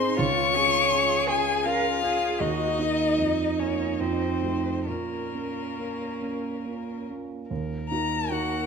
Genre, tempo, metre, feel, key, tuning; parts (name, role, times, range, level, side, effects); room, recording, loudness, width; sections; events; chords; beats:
classical, slow romantic movement for piano quartet; 64-82 BPM; 3/4; rubato; Bb minor; A4 = 440 Hz
warm violin; melody; 0.0-8.7 s; Bb4 to Db6; -27 LUFS; left 7 dB
dark violin; second line; 0.0-8.7 s; Bb3 to Db5; -30 LUFS; left 2 dB
warm cello; second line; 0.0-8.7 s; Db4 to Bb4; -31 LUFS; right 9 dB
dark concert grand piano; accompaniment; 0.0-8.7 s; Db2 to Ab4; -29 LUFS; right 2 dB
wet recital hall reverb, RT60 1.9 s; minimal, uncompressed stereo recording; -23 LUFS; side -5 dB against mid
0.0-7.5 A section; 7.5-8.7 B section
0.2 Db; 2.4 Ebm; 3.2 Bbm/F; 4.0 F7b9; 4.9 Bbm; 7.5 Ebm
| 0.17 0.92 1.66 | 2.40 3.19 3.99 | 4.86 5.78 6.64 | 7.50 8.30